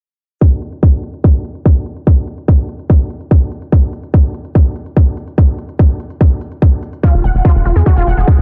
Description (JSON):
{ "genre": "psychedelic trance", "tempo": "145 BPM", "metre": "4/4", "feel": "straight", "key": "F phrygian", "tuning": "A4 = 440 Hz", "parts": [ { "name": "electronic hi-hat", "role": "drums", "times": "0.4-8.4 s", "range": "none", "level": "-55 LUFS", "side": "equal", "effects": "none" }, { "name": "electronic kick drum", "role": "drums", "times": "0.4-8.4 s", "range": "none", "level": "-13 LUFS", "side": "equal", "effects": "none" }, { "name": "unison pluck", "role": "riff", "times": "7.0-8.2 s", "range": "F4 to Gb5", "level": "-22 LUFS", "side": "equal", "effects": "sidechain pumping, delay" }, { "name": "tight sequencer bass", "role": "bass", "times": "7.1-8.4 s", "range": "F1 to F2", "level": "-14 LUFS", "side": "equal", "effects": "none" } ], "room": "little or no reverb", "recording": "dense, heavily limited modern master, low-pass filter", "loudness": "-13 LUFS", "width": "mono", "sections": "0.4-8.4 A section", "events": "filter sweep 0.4-8.4", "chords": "0.4 F5", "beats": "| 0.41 0.83 1.24 1.66 | 2.07 2.48 2.90 3.31 | 3.72 4.14 4.55 4.96 | 5.38 5.79 6.21 6.62 | 7.03 7.45 7.86 8.28" }